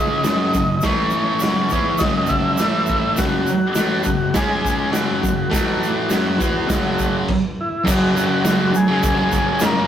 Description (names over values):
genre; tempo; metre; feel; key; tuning
garage rock duo or trio; 102 BPM; 4/4; straight; unclear; A4 = 444 Hz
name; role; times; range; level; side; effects
overdriven combo organ; melody; 0.0-9.9 s; E4 to E5; -22 LUFS; equal; none
thick fuzz guitar; riff; 0.0-9.9 s; F#2 to E4; -19 LUFS; equal; distortion
raw garage drum kit; drums; 0.2-9.7 s; crash cymbal, hi-hat, kick drum, snare drum; -22 LUFS; equal; none
egg shaker; percussion; 0.2-9.7 s; none; -35 LUFS; right 3 dB; none
room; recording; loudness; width
moderate stone room reverb, RT60 1.0 s; rough rehearsal-room recording; -16 LUFS; side -10 dB against mid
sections
0.0-7.9 A section; 7.9-9.9 B section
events
stop 7.3-7.9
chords
0.2 F#5; 0.8 A5; 1.4 F#5; 2.6 A5; 3.2 F#5; 4.4 C#5; 4.9 F#5; 5.5 A5; 6.1 F#5; 7.3 N.C.; 7.9 F#